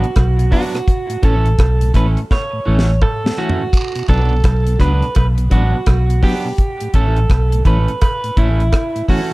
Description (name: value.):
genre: roots reggae.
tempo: 84 BPM.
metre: 4/4.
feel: swing 63% on 16ths.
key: unclear.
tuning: A4 = 440 Hz.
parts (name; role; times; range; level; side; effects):
electric guitar at the edge of break-up; melody; 0.0-9.3 s; E4 to C#5; -22 LUFS; right 3 dB; tape echo.
electric guitar at the edge of break-up; accompaniment; 0.0-9.3 s; E3 to D4; -26 LUFS; right 2 dB; tape echo.
mellow tonewheel organ; accompaniment; 0.0-9.3 s; A2 to D4; -24 LUFS; left 1 dB; slow rotary speaker.
deep reggae drum kit; drums; 0.0-9.3 s; hi-hat, kick drum, rim click, snare drum, toms; -16 LUFS; equal; none.
vintage muted fingered electric bass; bass; 0.2-8.7 s; A1 to C#2; -14 LUFS; equal; none.
cowbell and jawbone-type rattle; percussion; 0.2-8.9 s; none; -28 LUFS; right 5 dB; none.
room: little or no reverb.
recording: dark, warm production.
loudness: -13 LUFS.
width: side -21 dB against mid.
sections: 0.0-9.3 A section.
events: drum fill 2.3-3.7.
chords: 0.0 Bm; 0.9 A; 3.7 Bm; 6.6 A.